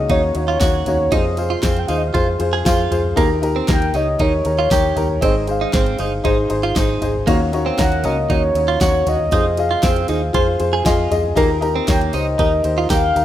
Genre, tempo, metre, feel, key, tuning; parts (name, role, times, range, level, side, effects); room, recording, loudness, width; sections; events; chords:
piano-driven pop; 117 BPM; 4/4; straight; A4 = 439 Hz
mellow horn-like synth lead; melody; 0.0-13.2 s; Db5 to G5; -21 LUFS; equal; chorus
warm upright piano; accompaniment; 0.0-13.2 s; Ab2 to Ab5; -20 LUFS; left 3 dB
vintage muted fingered electric bass; bass; 0.0-13.2 s; G1 to F2; -22 LUFS; equal
direct-recorded clean electric guitar; riff; 0.1-13.2 s; Bb3 to Ab4; -23 LUFS; right 7 dB; lush chorus
pop drum kit; drums; 0.1-13.2 s; kick drum, ride cymbal, snare drum, toms; -20 LUFS; equal
tambourine; percussion; 0.6-13.2 s; -40 LUFS; left 5 dB
moderate lush hall reverb, RT60 1.7 s; rough home demo mix; -15 LUFS; side -12 dB against mid
0.0-13.2 A section
upright piano fill 10.6-11.4
0.0 Ebm7; 1.1 Fm; 3.2 Eb; 5.2 Ab; 7.3 Ebm7; 9.3 Fm; 11.4 Eb